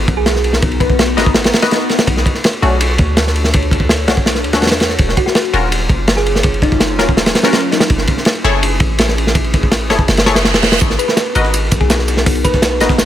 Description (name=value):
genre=drum and bass, jungle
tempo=165 BPM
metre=4/4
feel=straight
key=G# minor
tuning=A4 = 440 Hz
part: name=warbly tape-like pad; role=sustained chords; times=0.0-13.1 s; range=F#3 to A#5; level=-22 LUFS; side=left 2 dB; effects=chorus, built-in reverb, phaser
part: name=warm 808-style bass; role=bass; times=0.0-13.1 s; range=D#1 to E2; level=-18 LUFS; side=equal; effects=none
part: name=impact and reverse cymbal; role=sound effects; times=0.0-0.6, 10.3-10.8 s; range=none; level=-22 LUFS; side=right 4 dB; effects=none
part: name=crunchy breakbeat drum kit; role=drums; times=0.1-13.1 s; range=kick drum, ride cymbal, snare drum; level=-13 LUFS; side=equal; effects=none
part: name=thumb-piano-like synth pluck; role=melody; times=0.2-1.2, 5.2-7.9, 11.0-12.8 s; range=C#4 to B4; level=-20 LUFS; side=right 1 dB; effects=chorus, dub echo
part: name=filtered dub chord stab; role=stabs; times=1.2-12.9 s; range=A3 to D#5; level=-20 LUFS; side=left 4 dB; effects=chorus, dub echo
part: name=breakbeat sampler-style drum kit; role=drums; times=10.8-13.1 s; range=hi-hat, snare drum, tambourine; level=-24 LUFS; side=right 3 dB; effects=overdrive, high-pass filter on perc, high-pass filter on snare, high-pass filter on hats, high-pass filter on room
room=light reverb, studio reverb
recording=none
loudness=-11 LUFS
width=side -12 dB against mid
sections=0.0-13.1 A section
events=impact 0.0-0.6; reverse cymbal 10.3-10.8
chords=0.0 G#m7; 2.1 Bm7; 5.0 D#m7; 7.9 F#m7; 10.8 G#m7